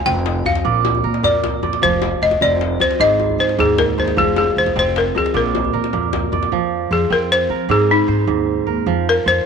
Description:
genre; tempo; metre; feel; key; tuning
west african traditional, West African string and xylophone music; 102 BPM (dotted quarters); 12/8; straight; F dorian; A4 = 440 Hz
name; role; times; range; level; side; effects
balafon; melody; 0.0-9.5 s; Eb4 to G5; -17 LUFS; left 3 dB; none
kora; arpeggios; 0.0-9.5 s; Ab2 to Eb5; -20 LUFS; right 11 dB; none
upright bass; bass; 0.0-9.4 s; F1 to F3; -23 LUFS; equal; none
djembe; percussion; 0.1-6.5 s; none; -25 LUFS; left 8 dB; none
room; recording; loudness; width
light reverb, small room ambience; 1960s-style stereo with parts hard left and right; -15 LUFS; side -6 dB against mid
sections
0.0-6.5 A section; 6.5-9.5 B section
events
balafon solo 6.5-9.5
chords
0.0 F5; 0.6 Bb; 1.8 F5; 3.0 Ab; 4.2 F5; 5.3 Bb; 6.5 F5; 7.7 Ab; 8.9 F5

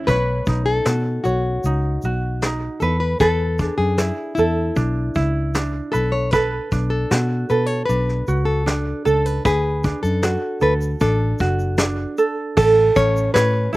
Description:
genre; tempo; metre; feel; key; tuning
acoustic pop; 77 BPM; 4/4; straight; unclear; A4 = 439 Hz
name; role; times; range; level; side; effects
ukulele; accompaniment; 0.0-13.8 s; C#4 to C#5; -22 LUFS; right 3 dB; slapback echo
shimmering ambient pad; sustained chords; 0.0-0.1, 13.6-13.8 s; E3 to C#4; -40 LUFS; right 1 dB; none
nylon-string guitar; melody; 0.1-13.7 s; E4 to C#5; -23 LUFS; left 2 dB; none
vintage muted fingered electric bass; bass; 0.1-13.8 s; F#1 to B2; -21 LUFS; equal; none
vintage brush drum kit; drums; 0.1-13.8 s; crash cymbal, kick drum, shaker, snare drum; -22 LUFS; equal; none
room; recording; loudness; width
little or no reverb; recorded outdoors, with no room sound; -17 LUFS; side -18 dB against mid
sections
0.1-12.6 A section; 12.6-13.8 B section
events
none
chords
0.1 Badd9; 2.8 E7sus4; 5.9 Bm7; 9.4 D6; 12.6 A

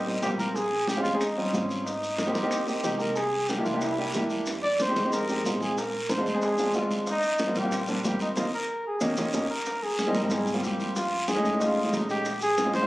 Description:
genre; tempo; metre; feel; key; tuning
Afro-Cuban jazz; 185 BPM; 4/4; straight; Eb major, Ab major from 9.7 s; A4 = 439 Hz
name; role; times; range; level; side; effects
breathy trumpet; melody; 0.0-12.9 s; Eb4 to D5; -28 LUFS; equal; plate reverb
upright bass; bass; 0.0-12.9 s; Ab1 to Ab2; -39 LUFS; equal; none
warm baby grand piano; accompaniment; 0.1-12.9 s; G3 to Ab4; -28 LUFS; equal; none
bongos; percussion; 0.1-12.9 s; none; -38 LUFS; left 2 dB; none
congas; percussion; 0.1-12.9 s; none; -35 LUFS; left 1 dB; none
guiro; percussion; 0.2-12.9 s; none; -38 LUFS; equal; none
maracas; percussion; 0.2-12.9 s; none; -40 LUFS; equal; none
room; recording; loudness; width
moderate small room reverb, RT60 0.6 s; recorded on a phone in the room, club reverb; -24 LUFS; side -18 dB against mid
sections
0.0-9.7 A section; 9.7-12.9 B section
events
drum fill 8.4-9.7; band accent 8.4-9.7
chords
0.0 Eb69; 0.6 Bbm7; 1.2 Eb13; 1.9 Abmaj7; 3.2 C7; 4.5 Fm9; 5.8 Bb9; 7.1 Eb69; 9.0 Eb7; 9.7 Abmaj9; 11.0 F7alt; 12.3 Bbm7

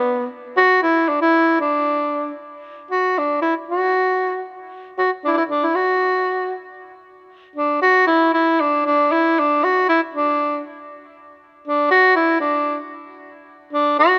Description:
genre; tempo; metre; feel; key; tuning
andean folk; 116 BPM; 2/4; straight; unclear; A4 = 440 Hz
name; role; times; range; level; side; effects
mellow tenor saxophone; solo; 0.0-14.2 s; B3 to F#4; -18 LUFS; equal; tape echo
room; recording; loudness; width
light reverb; close, detailed microphones; -18 LUFS; mono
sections
0.0-2.7 A section; 2.7-6.8 B section; 6.8-14.2 C section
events
none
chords
none

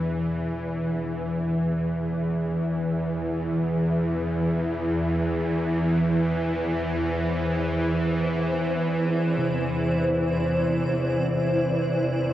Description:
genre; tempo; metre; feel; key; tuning
dark ambient drone; free time; none; none; unclear; A4 = 441 Hz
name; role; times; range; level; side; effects
bowed-like drone; drone; 0.0-12.3 s; E2 to E3; -24 LUFS; equal; built-in reverb
granular cloud pad; sustained chords; 5.8-12.3 s; E4 to D5; -28 LUFS; equal; built-in reverb
quartz singing bowl; arpeggios; 9.4-12.3 s; C3; -35 LUFS; equal; none
room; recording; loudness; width
wet huge ambient reverb, RT60 7.5 s; worn, warbling old tape, cassette tape, warbly pitch drift; -23 LUFS; side -13 dB against mid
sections
0.0-12.3 A section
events
none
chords
0.0 E5; 4.0 C/E

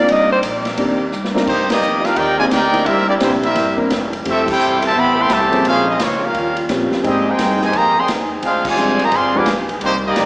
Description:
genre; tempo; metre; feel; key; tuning
jazz, big band swing; 172 BPM; 4/4; swing 64% on 8ths; C minor; A4 = 439 Hz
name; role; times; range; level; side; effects
warm baby grand piano; accompaniment; 0.0-9.5 s; F3 to G5; -21 LUFS; equal; none
clear saxophone section; sustained chords; 0.0-10.3 s; C3 to D5; -24 LUFS; equal; none
upright bass; bass; 0.0-10.3 s; E1 to Bb2; -28 LUFS; equal; none
swinging big-band drum kit; drums; 0.1-10.3 s; crash cymbal, hi-hat, kick drum, ride cymbal, snare drum; -24 LUFS; equal; none
bright trumpet section; melody; 1.5-10.3 s; Ab3 to D6; -16 LUFS; equal; none
clear trombone section; second line; 1.5-10.3 s; C3 to Ab4; -22 LUFS; equal; none
room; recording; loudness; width
wet recital hall reverb, RT60 1.7 s; recorded in a church or concert hall, small speaker sound; -13 LUFS; side -27 dB against mid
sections
0.0-1.5 A section; 1.5-10.3 B section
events
drum fill 1.1-1.5; band accent 1.6, 4.4, 8.6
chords
0.0 Cm9; 2.9 C7; 4.3 Fmaj9; 5.6 Bbm9; 6.3 Eb13; 7.0 Abmaj7; 8.4 Dm7b5; 9.1 G7b9

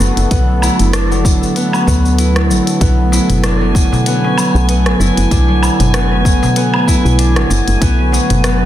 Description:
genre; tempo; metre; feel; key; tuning
organic downtempo; 96 BPM; 4/4; swing 56% on 16ths; B dorian; A4 = 440 Hz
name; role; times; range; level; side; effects
warm analog pad; sustained chords; 0.0-8.7 s; D3 to A4; -20 LUFS; right 1 dB; chorus, vintage 12-bit sampler grit, sidechain pumping
concert harp; arpeggios; 0.0-8.7 s; F#3 to E4; -16 LUFS; equal; digital delay
woody FM bass; bass; 0.0-8.7 s; F#1 to D2; -14 LUFS; equal; sidechain pumping
organic electronic drum kit; drums; 0.0-8.6 s; hi-hat, rim click, shaker, woodblock; -20 LUFS; equal; soft clipping on snare
electronic kick drum; drums; 0.3-8.0 s; none; -14 LUFS; equal; overdrive
drifting glass-harmonics texture; texture; 3.2-8.7 s; G#5; -23 LUFS; right 2 dB; chorus, built-in reverb
darbuka; percussion; 3.1-8.4 s; none; -20 LUFS; left 1 dB; none
room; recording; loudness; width
little or no reverb; dense, heavily limited modern master; -10 LUFS; side -12 dB against mid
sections
0.0-8.7 A section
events
none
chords
0.0 Bm7

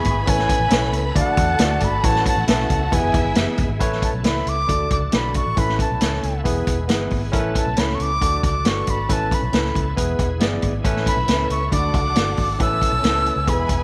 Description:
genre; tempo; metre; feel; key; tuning
uptempo 1960s-style soul; 136 BPM; 4/4; straight; A major; A4 = 439 Hz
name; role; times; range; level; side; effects
breathy bright concert flute; melody; 0.0-13.8 s; F#5 to E6; -25 LUFS; equal; tape echo
warm studio string section; second line; 0.0-3.8, 10.8-13.8 s; C#4 to B5; -32 LUFS; equal; none
barky tine electric piano; accompaniment; 0.0-13.8 s; A2 to E5; -28 LUFS; equal; none
bright tonewheel organ; sustained chords; 0.0-13.8 s; G#3 to A4; -37 LUFS; equal; none
vintage drum kit; drums; 0.0-13.8 s; hi-hat, kick drum, snare drum; -24 LUFS; equal; none
vintage muted fingered electric bass; bass; 0.1-13.8 s; E1 to E2; -27 LUFS; equal; none
room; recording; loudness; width
moderate spring reverb, RT60 2.0 s, small room ambience; none; -20 LUFS; mono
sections
0.0-3.8 A section; 3.8-13.8 B section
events
none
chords
0.3 Aadd9; 1.2 D; 2.0 Aadd9; 2.9 E; 3.8 Aadd9; 4.7 D; 5.6 Aadd9; 6.5 E; 7.3 Aadd9; 8.2 D; 9.1 Aadd9; 10.0 E; 10.8 Aadd9; 11.7 D; 12.6 Aadd9

